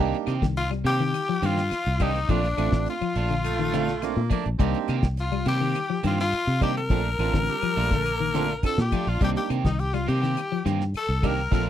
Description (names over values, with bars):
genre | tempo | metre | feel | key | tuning
afrobeat | 104 BPM | 4/4 | straight | C dorian | A4 = 440 Hz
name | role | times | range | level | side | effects
barky tine electric piano | accompaniment | 0.0-11.6 s | A3 to Bb4 | -30 LUFS | right 15 dB | overdrive
clean electric guitar | arpeggios | 0.0-11.7 s | D3 to G3 | -31 LUFS | left 10 dB | spring reverb
electric guitar at the edge of break-up | stabs | 0.0-11.7 s | Eb3 to G4 | -32 LUFS | right 9 dB | none
fingered electric bass | bass | 0.0-11.7 s | A1 to C3 | -26 LUFS | equal | none
damped 70s drum kit | drums | 0.1-11.7 s | hi-hat, kick drum, snare drum | -26 LUFS | equal | none
claves | percussion | 0.3-11.4 s | none | -42 LUFS | left 28 dB | none
raspy tenor saxophone | melody | 0.6-11.7 s | D4 to Bb4 | -28 LUFS | left 4 dB | none
edgy alto saxophone | second line | 0.6-11.7 s | D4 to Bb4 | -36 LUFS | right 4 dB | none
raspy baritone saxophone | second line | 3.4-8.5 s | G3 to C4 | -33 LUFS | right 12 dB | none
room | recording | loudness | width
little or no reverb | dry, close 1970s-style studio recording | -22 LUFS | side -11 dB against mid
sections
0.0-11.7 A section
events
none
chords
0.0 Cm7; 2.3 Bbmaj7; 4.6 Cm7; 6.9 Bbmaj7; 9.2 Cm7